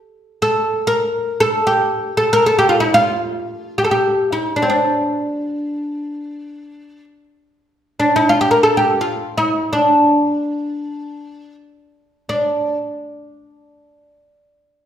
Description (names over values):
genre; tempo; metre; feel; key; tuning
Arabic maqam ensemble; free time; none; none; D maqam bayati; A4 = 440 Hz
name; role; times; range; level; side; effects
oud; solo; 0.4-12.8 s; C4 to Bb4; -15 LUFS; equal; none
room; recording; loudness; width
wet recital hall reverb, RT60 1.2 s; heard from further back in the room; -15 LUFS; side -10 dB against mid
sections
0.0-12.3 A section; 12.3-14.9 B section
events
none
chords
none